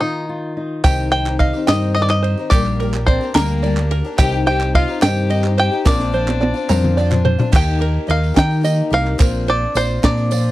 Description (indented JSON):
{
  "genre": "indie folk with a building arrangement",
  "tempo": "72 BPM (dotted quarters)",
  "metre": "6/8",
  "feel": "straight",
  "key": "Eb major",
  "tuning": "A4 = 439 Hz",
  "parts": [
    { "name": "bluegrass banjo", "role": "melody", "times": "0.0-10.5 s", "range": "Eb4 to G5", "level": "-21 LUFS", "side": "equal", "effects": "none" },
    { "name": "fingerpicked steel-string acoustic guitar", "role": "accompaniment", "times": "0.0-2.5 s", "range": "Eb3 to F4", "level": "-28 LUFS", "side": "left 2 dB", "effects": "none" },
    { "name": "picked twelve-string acoustic guitar", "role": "accompaniment", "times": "0.8-10.5 s", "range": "Bb2 to G4", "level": "-24 LUFS", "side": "left 5 dB", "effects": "none" },
    { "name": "open-back banjo", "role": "arpeggios", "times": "0.8-10.5 s", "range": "G4 to Bb5", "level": "-25 LUFS", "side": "right 6 dB", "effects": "none" },
    { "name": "fingered electric bass", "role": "bass", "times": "0.8-10.5 s", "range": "Bb1 to Eb3", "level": "-19 LUFS", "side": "equal", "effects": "none" },
    { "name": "compact cocktail drum kit", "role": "drums", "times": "0.8-10.4 s", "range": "crash cymbal, kick drum, ride cymbal, snare drum, toms", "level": "-16 LUFS", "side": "equal", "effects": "none" },
    { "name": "group handclap", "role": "percussion", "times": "0.8-10.2 s", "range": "none", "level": "-30 LUFS", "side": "right 4 dB", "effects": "none" },
    { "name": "tambourine", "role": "percussion", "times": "0.8-10.4 s", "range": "none", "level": "-36 LUFS", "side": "right 9 dB", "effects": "none" },
    { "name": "dark fiddle", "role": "second line", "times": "3.1-7.2 s", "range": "Bb3 to G4", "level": "-26 LUFS", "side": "left 7 dB", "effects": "none" }
  ],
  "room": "little or no reverb",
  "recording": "dry, close 1970s-style studio recording",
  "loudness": "-14 LUFS",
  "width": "side -16 dB against mid",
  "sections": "0.8-7.5 A section; 7.5-10.5 B section",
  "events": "drum fill 5.9-7.5",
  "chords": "0.0 Bbsus4 (rootless); 0.8 Cm; 2.5 Gm/Bb; 4.2 Cm; 5.9 Bbadd9; 7.5 Eb; 9.2 Bbadd9",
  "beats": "0.01 | 0.85 1.69 | 2.52 3.35 | 4.19 5.03 | 5.86 6.70 | 7.53 8.37 | 9.20 10.04"
}